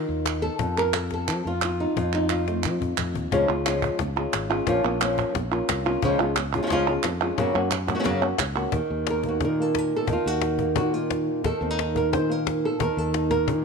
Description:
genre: flamenco.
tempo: 177 BPM.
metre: 4/4.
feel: straight.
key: unclear.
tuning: A4 = 443 Hz.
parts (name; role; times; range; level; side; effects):
flamenco guitar; melody; 0.0-13.6 s; F2 to C5; -24 LUFS; equal; none.
fretless electric bass; bass; 0.0-13.6 s; Ab1 to F3; -29 LUFS; equal; none.
cajon; percussion; 0.3-13.6 s; none; -30 LUFS; left 8 dB; none.
palmas hand claps; percussion; 0.3-8.7 s; none; -29 LUFS; right 12 dB; none.
room: light reverb, small room ambience.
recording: 1960s-style stereo with parts hard left and right.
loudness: -22 LUFS.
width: side -5 dB against mid.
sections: 0.0-3.3 A section; 3.3-8.7 B section; 8.7-13.6 C section.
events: drum fill 2.3-3.3.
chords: 0.0 Ebsus2; 0.6 F; 3.3 Db; 4.7 Bbm; 6.0 Db; 7.4 Gb; 8.7 Eb5.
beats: 0.26 | 0.60 0.94 1.28 1.62 | 1.96 2.30 2.64 2.98 | 3.32 3.66 4.00 4.34 | 4.67 5.01 5.35 5.69 | 6.03 6.37 6.70 7.04 | 7.38 7.72 8.06 8.40 | 8.73 9.07 9.41 9.75 | 10.09 10.43 10.77 11.11 | 11.45 11.78 12.12 12.46 | 12.80 13.14 13.48.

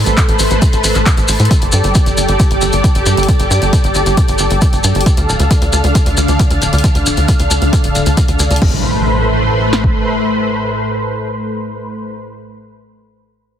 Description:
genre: uplifting trance.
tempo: 135 BPM.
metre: 4/4.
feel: straight.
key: A minor.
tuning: A4 = 435 Hz.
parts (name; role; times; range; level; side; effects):
analog string pad; sustained chords; 0.0-12.1 s; A2 to F5; -16 LUFS; equal; ensemble chorus, sidechain pumping.
tight sequencer bass; bass; 0.0-9.9 s; D1 to A2; -15 LUFS; equal; sidechain pumping.
punchy analog drum machine; drums; 0.1-8.7 s; crash cymbal, handclaps, hi-hat; -23 LUFS; left 2 dB; sidechain pumping on hats, sidechain pumping on cymbals.
maracas; percussion; 0.1-8.6 s; none; -20 LUFS; left 2 dB; none.
punchy analog drum machine; drums; 0.2-9.9 s; kick drum, snare drum; -13 LUFS; equal; none.
impact; sound effects; 8.6-12.2 s; none; -22 LUFS; equal; none.
room: light reverb.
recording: heavily compressed radio sound.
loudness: -10 LUFS.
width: side -9 dB against mid.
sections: 0.0-8.6 A section; 8.6-12.2 B section.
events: none.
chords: 0.0 Amadd9; 1.5 Gsus2; 5.1 Dm; 8.6 Amadd9.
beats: 0.17 0.62 1.06 | 1.51 1.95 2.40 2.84 | 3.28 3.73 4.17 4.62 | 5.06 5.51 5.95 6.39 | 6.84 7.28 7.73 8.17 | 8.62 9.06 9.51 9.95 | 10.39 10.84 11.28 11.73.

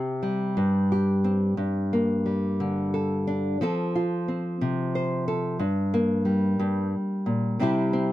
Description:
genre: folk, solo fingerstyle acoustic guitar.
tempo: 59 BPM (dotted quarters).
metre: 6/8.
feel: straight.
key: G dorian.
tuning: A4 = 439 Hz.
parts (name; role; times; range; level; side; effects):
nylon-string guitar; solo; 0.0-8.1 s; G2 to C5; -23 LUFS; equal; none.
room: light reverb.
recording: close, detailed microphones.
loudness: -23 LUFS.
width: side -15 dB against mid.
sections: 0.0-1.6 A section; 1.6-8.1 B section.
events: none.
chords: 0.0 C5; 1.6 Gm; 3.6 F; 5.6 Gm; 7.6 C.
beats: 0.56 | 1.58 2.59 | 3.60 4.61 | 5.60 6.60 | 7.62.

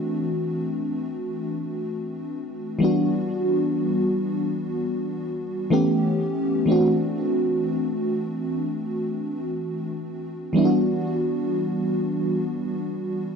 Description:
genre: R&B.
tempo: free time.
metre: none.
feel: none.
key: E minor.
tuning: A4 = 436 Hz.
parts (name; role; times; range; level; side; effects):
FM electric piano with soft pad layer; solo; 0.0-13.4 s; E3 to G4; -22 LUFS; equal; chorus, tremolo, tape echo.
room: light reverb.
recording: dry, gritty hardware recording.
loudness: -22 LUFS.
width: side -6 dB against mid.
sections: 0.0-2.8 A section; 2.8-13.4 B section.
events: none.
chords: 0.0 D7; 2.8 Em7; 5.7 A7; 6.7 D7; 10.6 Em7.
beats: free time.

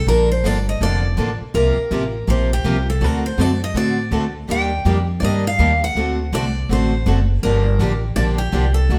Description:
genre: acoustic string swing (jazz manouche).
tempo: 163 BPM.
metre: 4/4.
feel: swing 62% on 8ths.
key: G minor.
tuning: A4 = 440 Hz.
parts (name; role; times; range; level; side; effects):
picked steel-string acoustic guitar; melody; 0.0-9.0 s; G4 to G5; -25 LUFS; equal; none.
upright bass; bass; 0.0-9.0 s; F1 to A2; -21 LUFS; equal; none.
picked steel-string acoustic guitar; accompaniment; 0.1-9.0 s; C3 to A4; -27 LUFS; equal; none.
picked steel-string acoustic guitar; accompaniment; 0.1-9.0 s; C3 to A4; -28 LUFS; equal; none.
room: moderate stone room reverb, RT60 1.1 s.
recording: band playing live in one room.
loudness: -19 LUFS.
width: mono.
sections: 0.0-9.0 A section.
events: none.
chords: 0.1 Bbmaj7; 1.5 C7sus4; 3.0 D7; 4.5 Ebmaj7; 6.0 D7; 7.4 Gm7.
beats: | 0.07 0.44 0.81 1.18 | 1.55 1.92 2.28 2.65 | 3.02 3.39 3.75 4.12 | 4.49 4.86 5.23 5.59 | 5.96 6.33 6.70 7.07 | 7.43 7.80 8.17 8.53 | 8.90.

